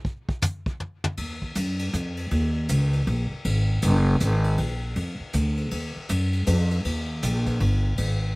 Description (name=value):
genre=jazz piano trio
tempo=159 BPM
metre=3/4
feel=swing 64% on 8ths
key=Eb minor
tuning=A4 = 445 Hz
part: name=vintage brush drum kit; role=drums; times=0.0-8.1 s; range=hi-hat, kick drum, ride cymbal, toms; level=-31 LUFS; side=left 1 dB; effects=none
part: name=upright bass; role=bass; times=1.2-8.3 s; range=Gb1 to Gb2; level=-22 LUFS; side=equal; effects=none
room=little or no reverb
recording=recorded outdoors, with no room sound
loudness=-22 LUFS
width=side -26 dB against mid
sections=0.0-1.2 A section; 1.2-8.4 B section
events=drum solo 0.0-1.2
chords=none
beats=| 0.05 0.43 0.81 | 1.18 1.56 1.94 | 2.32 2.69 3.07 | 3.45 3.83 4.21 | 4.58 4.96 5.34 | 5.72 6.09 6.47 | 6.85 7.23 7.61 | 7.98